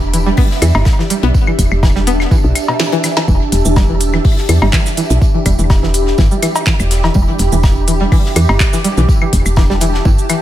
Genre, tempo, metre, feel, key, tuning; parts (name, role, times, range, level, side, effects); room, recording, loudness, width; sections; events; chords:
minimal techno; 124 BPM; 4/4; swing 54% on 16ths; E minor; A4 = 440 Hz
woody FM bass; bass; 0.0-10.1 s; E1 to E2; -14 LUFS; equal; tube saturation, sidechain pumping
ethereal airy pad; texture; 0.0-10.4 s; D4 to B5; -21 LUFS; equal; ensemble chorus, built-in reverb, phaser, sidechain pumping
string-like resonator pluck; riff; 0.1-10.4 s; B2 to B3; -19 LUFS; equal; chorus, vintage 12-bit sampler grit, sidechain pumping, tape echo
minimal click drum kit; drums; 0.1-10.4 s; cabasa, handclaps, hi-hat, snare drum; -19 LUFS; equal; studio reverb
tight metal drum kit; drums; 0.1-10.4 s; hi-hat, snare drum, tambourine; -27 LUFS; left 1 dB; sidechain pumping on hats, high-pass filter on hats, studio reverb, high-pass filter on snare, sidechain pumping on perc, high-pass filter on perc, high-pass filter on room, tape echo
electronic kick drum; drums; 0.4-10.2 s; -13 LUFS; equal; studio reverb
woodblock, claves and cowbell; percussion; 0.4-10.4 s; -22 LUFS; left 2 dB; studio reverb, tape echo
pulsing gated texture; texture; 3.6-10.4 s; G4; -26 LUFS; right 4 dB; chorus, built-in reverb, sidechain pumping
studio ambience; echo-heavy mix; -10 LUFS; side -13 dB against mid
0.0-10.4 A section
drum fill 2.8-3.3
0.0 Em7